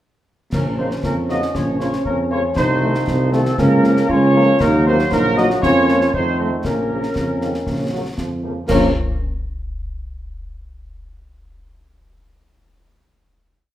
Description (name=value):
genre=military-style march for wind band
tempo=118 BPM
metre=2/4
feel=straight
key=Bb minor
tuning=A4 = 435 Hz
part: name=dark trumpet section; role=melody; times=0.5-8.9 s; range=A4 to Eb5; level=-22 LUFS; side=equal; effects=none
part: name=warm euphonium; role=second line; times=0.5-8.9 s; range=A3 to Eb4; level=-23 LUFS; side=right 2 dB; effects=none
part: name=warm woodwind section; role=second line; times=0.5-8.9 s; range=C4 to Bb4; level=-25 LUFS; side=left 1 dB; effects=none
part: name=warm trombone section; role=sustained chords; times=0.5-8.9 s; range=Db3 to Db4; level=-26 LUFS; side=right 1 dB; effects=none
part: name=mellow tuba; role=bass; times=0.5-8.9 s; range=Bb1 to F2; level=-19 LUFS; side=right 1 dB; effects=none
part: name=concert snare drum, clash cymbals and concert bass drum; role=drums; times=0.5-9.0 s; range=none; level=-26 LUFS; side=left 1 dB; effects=none
part: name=mellow French horn section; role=accompaniment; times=0.8-8.9 s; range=Bb2 to Db4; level=-25 LUFS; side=left 3 dB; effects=none
room=wet large studio reverb, RT60 0.9 s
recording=heard from further back in the room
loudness=-15 LUFS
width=side -12 dB against mid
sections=0.5-8.7 A section; 8.7-9.7 final chord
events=none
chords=0.5 Bbm; 2.6 F7/C; 3.6 Bbm/Db; 4.6 Ebm; 5.6 Bbm/F; 6.1 F7; 6.6 Bbm